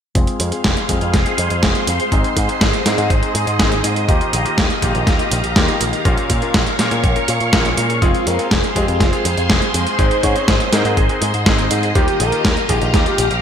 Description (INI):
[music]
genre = italo disco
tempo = 122 BPM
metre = 4/4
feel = straight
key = F minor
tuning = A4 = 440 Hz
[part]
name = phased string machine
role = sustained chords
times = 0.4-13.4 s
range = G4 to Db6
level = -21 LUFS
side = equal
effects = ensemble chorus, phaser
[part]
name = clear electric grand piano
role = stabs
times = 0.2-13.2 s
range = Ab2 to Bb4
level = -23 LUFS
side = left 2 dB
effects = low-pass filter, digital delay
[part]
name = picked electric bass with an envelope filter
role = bass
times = 0.2-13.4 s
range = F1 to Bb2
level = -21 LUFS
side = equal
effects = low-pass filter, digital delay
[part]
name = dusty soul sampler-style drum kit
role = drums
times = 0.2-13.4 s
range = hi-hat, snare drum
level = -19 LUFS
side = equal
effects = overdrive, studio reverb, gated reverb
[part]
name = electronic kick drum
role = drums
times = 0.2-13.0 s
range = none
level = -19 LUFS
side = equal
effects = overdrive, studio reverb
[part]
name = wide unison lead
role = melody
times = 8.0-13.4 s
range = F4 to Db5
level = -22 LUFS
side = equal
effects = ping-pong delay
[sound]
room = moderate lush hall reverb, RT60 2.1 s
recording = bright 1980s-style digital production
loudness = -14 LUFS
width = side -8 dB against mid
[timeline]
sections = 0.2-13.4 A section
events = filter sweep on electric grand piano 0.2-13.4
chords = 0.2 Fm; 2.1 Ab; 4.1 Ebadd9; 6.1 Bbm; 8.0 Fm; 10.0 Ab; 12.0 Ebadd9